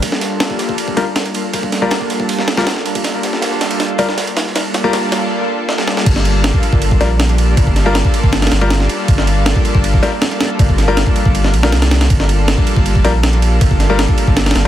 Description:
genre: drum and bass, jungle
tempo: 159 BPM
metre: 4/4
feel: straight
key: G minor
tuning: A4 = 439 Hz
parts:
  - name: lush unison pad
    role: sustained chords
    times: 0.0-14.7 s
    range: G3 to A4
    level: -19 LUFS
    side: equal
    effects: chorus, vintage 12-bit sampler grit
  - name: breakbeat sampler-style drum kit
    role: drums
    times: 0.0-14.7 s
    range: crash cymbal, kick drum, ride cymbal, snare drum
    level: -15 LUFS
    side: equal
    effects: high-pass filter on cymbals, high-pass filter on kick, high-pass filter on snare
  - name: crunchy breakbeat drum kit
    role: drums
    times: 0.0-5.2 s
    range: hi-hat, snare drum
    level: -26 LUFS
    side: right 2 dB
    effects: high-pass filter on hats, high-pass filter on snare, high-pass filter on room
  - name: bright concert grand piano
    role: stabs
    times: 1.0-14.7 s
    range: G3 to Bb4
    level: -20 LUFS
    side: left 3 dB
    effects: vintage 12-bit sampler grit, low-pass filter, dub echo
  - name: saturated sub bass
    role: bass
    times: 6.1-14.7 s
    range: G1 to C2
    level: -14 LUFS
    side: equal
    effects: none
room: light reverb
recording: dense, heavily limited modern master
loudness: -12 LUFS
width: side -12 dB against mid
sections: 0.0-6.1 A section; 6.1-14.7 B section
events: build-up 0.0-6.1; filter sweep on grand piano 0.0-6.1; drum fill 3.0-5.3, 5.7-6.1; drop 6.1-14.7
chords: 0.0 Gm7

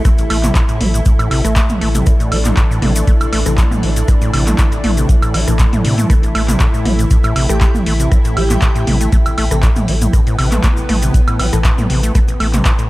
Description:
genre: acid house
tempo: 119 BPM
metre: 4/4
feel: swing 53% on 16ths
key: A minor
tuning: A4 = 440 Hz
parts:
  - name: lush unison pad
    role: sustained chords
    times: 0.0-12.9 s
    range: E3 to E4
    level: -23 LUFS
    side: equal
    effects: chorus, sidechain pumping
  - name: deep acid bass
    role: riff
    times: 0.0-12.9 s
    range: A1 to A3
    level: -20 LUFS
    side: equal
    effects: overdrive, vintage 12-bit sampler grit, analog delay
  - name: cabasa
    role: percussion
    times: 0.0-12.9 s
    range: none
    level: -29 LUFS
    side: left 3 dB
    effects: none
  - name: granular cloud pad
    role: texture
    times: 0.0-12.9 s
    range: E4 to G5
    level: -28 LUFS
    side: right 1 dB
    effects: built-in reverb, sidechain pumping
  - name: electro analog drum machine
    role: drums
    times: 0.1-12.9 s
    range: handclaps, hi-hat, rim click, toms, woodblock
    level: -20 LUFS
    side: right 1 dB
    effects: none
  - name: electronic kick drum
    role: drums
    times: 0.1-12.8 s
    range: none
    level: -13 LUFS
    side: equal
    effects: none
  - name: warm sub bass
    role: bass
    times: 0.3-12.6 s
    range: A1 to A2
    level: -17 LUFS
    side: equal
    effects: sidechain pumping
  - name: deep mellow chord stab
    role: stabs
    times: 1.4-11.6 s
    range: E3 to A4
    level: -25 LUFS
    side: left 3 dB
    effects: chorus, phaser, analog delay
  - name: airy dreamy lead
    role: melody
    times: 7.5-8.9 s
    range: G4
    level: -25 LUFS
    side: equal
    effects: chorus, analog delay
room: digital ambience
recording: dry, gritty hardware recording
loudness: -11 LUFS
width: side -18 dB against mid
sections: 0.0-12.9 A section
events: none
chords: 0.0 A5

